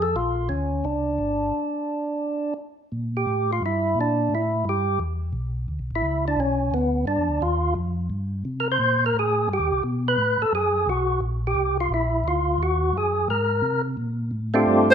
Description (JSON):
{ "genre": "jazz", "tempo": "174 BPM", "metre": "4/4", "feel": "swing 62% on 8ths", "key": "unclear", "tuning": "A4 = 440 Hz", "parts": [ { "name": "percussive tonewheel organ", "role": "melody", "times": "0.0-14.9 s", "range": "A3 to C5", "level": "-22 LUFS", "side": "equal", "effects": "slow rotary speaker" }, { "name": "mellow tonewheel organ", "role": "bass", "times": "0.0-14.9 s", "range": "G1 to C3", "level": "-26 LUFS", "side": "equal", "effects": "chorus vibrato, slow rotary speaker" }, { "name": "clear alto saxophone", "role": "melody", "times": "14.9 s", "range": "C5", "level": "-10 LUFS", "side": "right 1 dB", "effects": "none" } ], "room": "light reverb", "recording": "minimal, uncompressed stereo recording", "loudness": "-21 LUFS", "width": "side -8 dB against mid", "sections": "0.0-2.9 A section; 2.9-14.0 B section", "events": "break 1.5-2.9", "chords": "0.2 Bb69; 2.9 Bb6; 4.3 Asus2; 5.7 Dsus2; 7.1 G5; 8.5 Cm7; 9.8 B5; 11.2 Bbsus2; 11.9 Bb; 12.6 Ebm; 13.3 Abadd9; 14.0 Bbmaj13" }